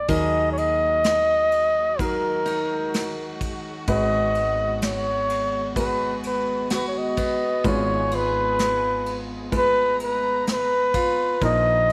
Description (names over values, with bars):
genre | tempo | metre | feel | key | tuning
acoustic folk-pop ballad | 64 BPM | 4/4 | straight | Eb minor | A4 = 444 Hz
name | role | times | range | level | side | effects
mellow flugelhorn | melody | 0.0-11.9 s | Bb4 to Eb5 | -24 LUFS | equal | none
warm grand piano | accompaniment | 0.0-11.9 s | Ab1 to Cb5 | -33 LUFS | equal | none
woody fretless electric bass | bass | 0.0-11.9 s | Ab1 to Eb2 | -32 LUFS | equal | none
warm chamber string section | sustained chords | 0.1-11.9 s | Eb3 to Bb5 | -37 LUFS | equal | none
picked steel-string acoustic guitar | arpeggios | 0.1-11.9 s | Cb4 to Ab4 | -35 LUFS | equal | none
soft brush drum kit | drums | 0.1-11.9 s | crash cymbal, kick drum, ride cymbal, snare drum | -34 LUFS | equal | none
room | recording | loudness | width
light reverb, small room ambience | none | -23 LUFS | mono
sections
0.1-11.9 A section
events
none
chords
0.1 Ebm; 3.9 Abm7; 7.6 Fdim/Ab; 11.4 Bbsus4